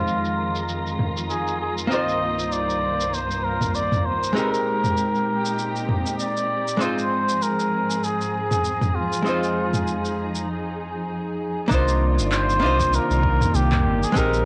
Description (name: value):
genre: sunset chillout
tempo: 98 BPM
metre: 4/4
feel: swing 57% on 16ths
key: unclear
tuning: A4 = 441 Hz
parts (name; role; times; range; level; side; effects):
- trumpet with cup mute; melody; 0.0-14.5 s; F4 to Eb5; -27 LUFS; equal; cassette tape, analog delay
- archtop guitar, miked and amplified; accompaniment; 0.0-14.5 s; Ab3 to C5; -28 LUFS; equal; low-pass filter, cassette tape
- muted studio string section; sustained chords; 0.0-14.5 s; C2 to D5; -30 LUFS; equal; cassette tape
- wind-like tuned noise texture; texture; 0.0-10.5 s; Bb5; -40 LUFS; equal; built-in reverb, cassette tape
- deep house drum kit; drums; 0.1-14.4 s; handclaps, shaker, toms; -30 LUFS; equal; low-pass filter on perc, cassette tape, low-pass filter on toms, low-pass filter on snare, low-pass filter on room
- round analog bass; bass; 11.7-14.5 s; G1 to C2; -24 LUFS; equal; none
- electronic kick drum; drums; 11.7-14.3 s; none; -27 LUFS; equal; cassette tape
room: moderate spring reverb, RT60 1.5 s, digital ambience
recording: home recording on cassette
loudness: -23 LUFS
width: mono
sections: 0.0-11.7 A section; 11.7-14.5 B section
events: filter sweep on drum 0.0-11.7; break 10.5-11.7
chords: 0.0 Fm7; 1.9 Cm11; 4.4 Bb13sus4; 6.8 Ab6; 9.3 Fm7; 11.7 Cm11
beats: 0.07 0.68 1.29 | 1.91 2.52 3.13 3.74 | 4.36 4.97 5.58 6.19 | 6.81 7.42 8.03 8.64 | 9.26 9.87 10.48 11.09 | 11.70 12.32 12.93 13.54 | 14.15